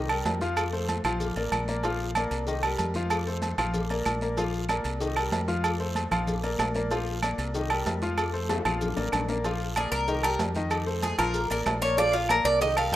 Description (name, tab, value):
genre	latin, salsa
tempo	189 BPM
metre	4/4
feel	straight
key	Bb major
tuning	A4 = 439 Hz
part	clear concert grand piano	accompaniment	0.0-13.0 s	Eb3 to F5	-31 LUFS	left 2 dB	none
part	deep dub fingered electric bass	bass	0.0-13.0 s	A1 to F2	-32 LUFS	equal	none
part	agogo bells and timbales	percussion	0.1-13.0 s	none	-30 LUFS	right 3 dB	none
part	claves	percussion	0.1-12.9 s	none	-39 LUFS	right 1 dB	none
part	congas	percussion	0.1-13.0 s	none	-38 LUFS	equal	none
part	maracas	percussion	0.1-13.0 s	none	-45 LUFS	left 2 dB	none
part	cowbell and bongos	percussion	0.3-13.0 s	none	-36 LUFS	left 3 dB	none
part	guiro	percussion	0.3-13.0 s	none	-42 LUFS	right 3 dB	none
part	Cuban tres	melody	9.8-13.0 s	F4 to F5	-25 LUFS	right 1 dB	none
room	light reverb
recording	rough home demo mix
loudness	-25 LUFS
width	side -14 dB against mid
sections	0.0-9.4 A section; 9.4-13.0 B section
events	drum fill 8.5-9.4; Cuban tres solo 9.4-13.0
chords	0.0 C7(no3); 0.6 F; 1.2 Bb; 2.5 Cm7; 3.1 F; 3.7 Bb; 5.0 Cm7; 5.6 F; 6.3 Bb; 7.5 Cm7; 8.2 F; 8.8 Bb; 10.1 Cm7; 10.7 F7; 11.3 Bb